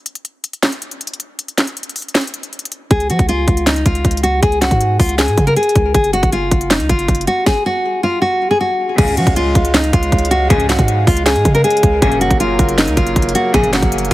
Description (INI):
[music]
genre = hip hop, trap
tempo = 158 BPM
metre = 4/4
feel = half-time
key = Db major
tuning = A4 = 440 Hz
[part]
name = trap drum kit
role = drums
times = 0.1-14.1 s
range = crash cymbal, handclaps, hi-hat, kick drum, snare drum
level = -16 LUFS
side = equal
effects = none
[part]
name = nylon-string guitar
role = melody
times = 2.9-14.1 s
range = Eb4 to Bb4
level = -15 LUFS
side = left 1 dB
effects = ping-pong delay
[part]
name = warm 808-style bass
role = bass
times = 2.9-14.1 s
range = Gb1 to F3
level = -18 LUFS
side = equal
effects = none
[part]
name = hand-pumped harmonium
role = sustained chords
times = 9.0-14.1 s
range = Db3 to F5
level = -22 LUFS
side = right 2 dB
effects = none
[part]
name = clear symphonic string section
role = stabs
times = 9.0-13.8 s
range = Ab1 to Db3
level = -24 LUFS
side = left 2 dB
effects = ping-pong delay
[sound]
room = light reverb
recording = heavily compressed radio sound, multiband compression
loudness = -12 LUFS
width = side -16 dB against mid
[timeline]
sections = 0.0-9.0 A section; 9.0-14.1 B section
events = break 0.0-2.9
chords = 0.0 N.C.; 2.9 Db; 5.9 Gb5; 9.0 Db; 12.0 Gb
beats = 0.25 0.63 1.01 | 1.39 1.77 2.15 2.53 | 2.91 3.29 3.67 4.05 | 4.43 4.81 5.19 5.57 | 5.95 6.33 6.71 7.08 | 7.46 7.84 8.22 8.60 | 8.98 9.36 9.74 10.12 | 10.50 10.88 11.26 11.64 | 12.02 12.40 12.78 13.16 | 13.54 13.92